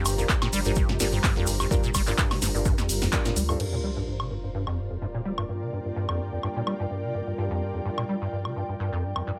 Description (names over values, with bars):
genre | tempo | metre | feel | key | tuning
acid house | 127 BPM | 4/4 | swing 54% on 16ths | G minor | A4 = 441 Hz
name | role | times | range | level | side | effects
dark analog pad | sustained chords | 0.0-9.4 s | G3 to Bb4 | -40 LUFS | equal | chorus, vintage 12-bit sampler grit, sidechain pumping
acid bass, square | riff | 0.0-9.3 s | F2 to G3 | -32 LUFS | equal | ensemble chorus, tape echo
ethereal airy pad | texture | 0.0-9.4 s | F4 to Bb5 | -39 LUFS | equal | ensemble chorus, built-in reverb, tremolo, sidechain pumping
round analog bass | bass | 0.1-3.6 s | G1 to D2 | -32 LUFS | equal | tube saturation, sidechain pumping
punchy analog drum machine | drums | 0.1-9.2 s | crash cymbal, handclaps, hi-hat, snare drum, toms, woodblock | -32 LUFS | equal | none
tube shaker | percussion | 0.1-3.6 s | none | -36 LUFS | equal | none
dark grand piano | stabs | 0.2-9.4 s | G3 to Bb4 | -39 LUFS | equal | low-pass filter, tape echo
electronic kick drum | drums | 0.3-3.2 s | none | -29 LUFS | equal | none
sub drop | sound effects | 3.6-5.5 s | none | -38 LUFS | equal | none
room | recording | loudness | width
moderate studio reverb, RT60 0.5 s | none | -27 LUFS | mono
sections
0.0-3.6 A section; 3.6-9.4 B section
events
drop 0.0-3.6; band accent 3.1; impact 3.6-5.5; filter sweep on acid bass 3.6-9.4; filter sweep on analog synth pad 3.6-9.4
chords
0.0 Gm7